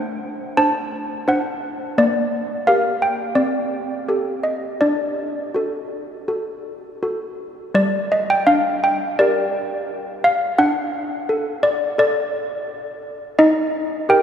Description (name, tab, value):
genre	classical, tune for handbells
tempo	85 BPM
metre	4/4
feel	straight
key	G minor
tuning	A4 = 441 Hz
part	malleted handbells	solo	0.0-14.2 s	G3 to A5	-18 LUFS	equal	none
room	wet cathedral reverb, RT60 4.8 s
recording	heard from further back in the room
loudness	-18 LUFS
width	side -8 dB against mid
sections	0.0-7.7 A section; 7.7-14.2 B section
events	none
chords	0.0 D7; 2.0 Gm/Bb; 3.4 Cm69; 4.8 D; 7.7 Gm; 10.6 D; 13.4 Eb